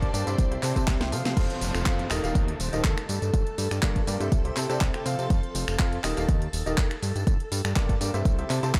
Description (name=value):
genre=piano house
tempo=122 BPM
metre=4/4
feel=swing 53% on 16ths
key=F major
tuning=A4 = 440 Hz
part: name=string machine, violins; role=sustained chords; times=0.0-8.8 s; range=A4 to C6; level=-41 LUFS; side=equal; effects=ensemble chorus, sidechain pumping
part: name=bright upright piano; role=riff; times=0.0-8.8 s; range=G2 to A5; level=-34 LUFS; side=equal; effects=sidechain pumping, tape echo
part: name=fat analog bass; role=bass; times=0.0-8.8 s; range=Eb1 to C3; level=-32 LUFS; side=equal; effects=sidechain pumping
part: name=electronic kick drum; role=drums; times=0.0-8.8 s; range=none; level=-26 LUFS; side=equal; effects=none
part: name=house drum kit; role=drums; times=0.0-8.8 s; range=crash cymbal, finger snaps, handclaps, hi-hat, snare drum, tambourine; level=-35 LUFS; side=equal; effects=none
part: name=dark studio string section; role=texture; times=0.0-1.4 s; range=C4 to A5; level=-40 LUFS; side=equal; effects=sidechain pumping
part: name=downlifter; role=sound effects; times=1.4-5.3 s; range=none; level=-41 LUFS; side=equal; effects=none
part: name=breathy flute-like synth lead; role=melody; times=2.6-5.1 s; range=A4 to D5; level=-40 LUFS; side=equal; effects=lush chorus, tape echo
room=light reverb, digital ambience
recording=dark, warm production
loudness=-26 LUFS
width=mono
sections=0.0-1.4 A section; 1.4-8.8 B section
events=drum fill 0.9-1.4; drop 1.4-8.8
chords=0.4 C; 1.4 F; 2.1 Eb; 3.1 Gm; 4.3 C; 5.3 F; 6.0 Eb; 7.0 Gm; 8.3 C